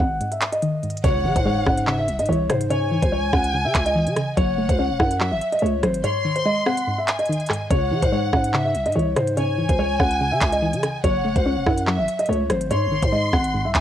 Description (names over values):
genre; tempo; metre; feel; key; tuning
hip hop, drill; 144 BPM; 4/4; half-time; C# harmonic minor; A4 = 438 Hz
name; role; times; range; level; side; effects
dark concert grand piano; melody; 0.0-13.8 s; B#4 to F#5; -24 LUFS; left 1 dB; cassette tape
soft round pluck; accompaniment; 0.0-13.8 s; G#2 to E4; -25 LUFS; equal; chorus, cassette tape
growling 808-style bass; bass; 0.0-13.8 s; E1 to C#3; -25 LUFS; equal; none
drill drum kit; drums; 0.0-13.8 s; handclaps, hi-hat, kick drum, rim click; -23 LUFS; equal; cassette tape
warm studio violin section; second line; 1.0-13.8 s; E5 to B#5; -28 LUFS; equal; cassette tape, tape echo
impact; sound effects; 1.0-2.7 s; none; -33 LUFS; right 1 dB; none
room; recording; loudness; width
light reverb; home recording on cassette; -18 LUFS; side -10 dB against mid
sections
0.0-1.0 A section; 1.0-13.8 B section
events
break 0.2-1.0; impact 1.0-2.7; kick muted 6.0-7.7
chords
0.0 G#; 1.0 C#m; 4.4 F#m7; 6.0 G#; 7.7 C#m; 11.0 F#m7; 12.7 G#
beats
0.21 0.62 | 1.04 1.46 1.87 2.29 | 2.71 3.12 3.54 3.96 | 4.37 4.79 5.21 5.62 | 6.04 6.46 6.87 7.29 | 7.71 8.12 8.54 8.96 | 9.37 9.79 10.21 10.62 | 11.04 11.46 11.87 12.29 | 12.71 13.12 13.54